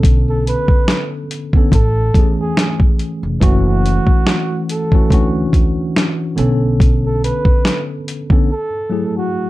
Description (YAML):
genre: lo-fi hip hop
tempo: 71 BPM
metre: 4/4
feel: swing 55% on 16ths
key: unclear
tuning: A4 = 438 Hz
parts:
  - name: tine electric piano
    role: accompaniment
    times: 0.0-9.5 s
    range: D3 to A4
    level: -20 LUFS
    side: left 1 dB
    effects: medium stereo tremolo, low-pass filter
  - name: upright bass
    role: bass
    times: 0.0-7.3 s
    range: E#1 to E2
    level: -18 LUFS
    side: equal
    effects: none
  - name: dusty soul sampler-style drum kit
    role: drums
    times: 0.0-8.5 s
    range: hi-hat, kick drum, snare drum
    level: -13 LUFS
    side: equal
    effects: none
  - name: mellow flugelhorn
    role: melody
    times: 0.3-9.5 s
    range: F#4 to B4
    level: -22 LUFS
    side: right 2 dB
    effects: low-pass filter
room: light reverb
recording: dark, warm production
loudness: -13 LUFS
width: side -17 dB against mid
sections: 0.0-9.5 A section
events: break 8.5-9.5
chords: 0.0 Bm9; 1.7 Amaj7; 3.4 F#m7; 5.1 Dmaj9; 6.4 Bm9; 8.5 F#m9